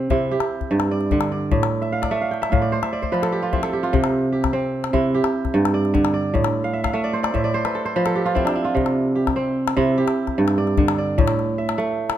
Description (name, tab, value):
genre	west african traditional, West African string and xylophone music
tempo	99 BPM (dotted quarters)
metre	12/8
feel	straight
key	C major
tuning	A4 = 444 Hz
part	kora	arpeggios	0.0-12.2 s	G2 to G5	-19 LUFS	right 2 dB	none
part	calabash	percussion	0.1-12.2 s	none	-24 LUFS	left 6 dB	none
room	light reverb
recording	close, detailed microphones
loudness	-18 LUFS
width	side -11 dB against mid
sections	0.0-3.9 A section; 3.9-12.2 B section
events	kora fill 1.8-3.9, 6.6-8.8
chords	0.3 G5; 1.5 Fmaj13/A; 2.7 F5; 3.9 C; 5.1 G5; 6.3 Amadd11; 7.5 F5; 8.8 C; 10.0 G5; 11.2 A5